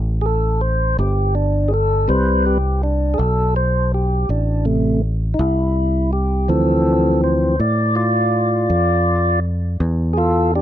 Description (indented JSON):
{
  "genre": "slow blues",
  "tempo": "54 BPM (dotted quarters)",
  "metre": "12/8",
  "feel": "straight",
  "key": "A minor",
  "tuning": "A4 = 440 Hz",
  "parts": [
    { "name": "fingered electric bass", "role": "bass", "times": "0.0-10.6 s", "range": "G1 to A2", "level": "-18 LUFS", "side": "equal", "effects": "none" },
    { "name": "tonewheel organ", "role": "sustained chords", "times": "0.2-10.6 s", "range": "C3 to D5", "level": "-18 LUFS", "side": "equal", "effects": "slow rotary speaker" }
  ],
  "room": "little or no reverb",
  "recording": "dry, close 1970s-style studio recording",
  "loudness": "-15 LUFS",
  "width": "side -11 dB against mid",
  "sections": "0.0-10.6 A section",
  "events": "tonewheel organ solo 0.0-10.6",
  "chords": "0.0 Am7; 6.5 Dm7"
}